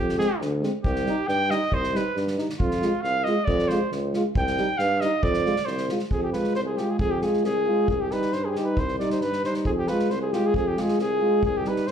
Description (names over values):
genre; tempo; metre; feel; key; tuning
balkan folk, Balkan brass band; 136 BPM; 2/4; straight; F dorian sharp4; A4 = 440 Hz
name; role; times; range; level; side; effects
warm trumpet; second line; 0.0-5.9 s; F4 to G5; -26 LUFS; right 2 dB; slapback echo
clear tuba; bass; 0.0-11.9 s; C2 to G2; -28 LUFS; equal; none
unplugged drum kit; percussion; 0.1-11.9 s; kick drum, snare drum; -31 LUFS; equal; none
mellow euphonium; accompaniment; 0.2-11.9 s; G3 to Ab3; -28 LUFS; right 3 dB; slapback echo
warm trombone; accompaniment; 0.2-11.9 s; C4 to F4; -31 LUFS; left 3 dB; slapback echo
clear flugelhorn; melody; 6.1-11.9 s; G4 to D5; -26 LUFS; left 2 dB; slapback echo
room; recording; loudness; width
moderate club reverb, RT60 0.5 s; live gig heard through the venue's PA, club reverb; -22 LUFS; side -8 dB against mid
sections
0.0-6.1 A section; 6.1-11.9 B section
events
trumpet solo 0.0-6.1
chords
0.0 Fm; 0.8 Cm; 2.6 Fm; 4.4 Cm; 5.2 Fm; 7.9 Cm; 9.7 Fm